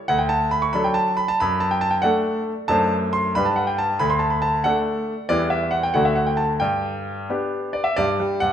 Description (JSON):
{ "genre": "classical-period piano sonatina", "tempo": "91 BPM (dotted quarters)", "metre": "6/8", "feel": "straight", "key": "G major", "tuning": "A4 = 443 Hz", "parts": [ { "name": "bright grand piano", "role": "solo", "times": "0.0-8.5 s", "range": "D2 to C#6", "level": "-19 LUFS", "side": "equal", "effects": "none" } ], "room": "wet recital hall reverb, RT60 1.7 s", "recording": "minimal, uncompressed stereo recording", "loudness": "-19 LUFS", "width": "side -9 dB against mid", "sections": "0.0-8.0 A section", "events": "none", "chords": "0.1 D; 1.4 D/F#; 2.7 D7/F#; 3.4 G; 4.0 D; 5.3 Em; 6.0 D; 6.6 G; 8.0 G5" }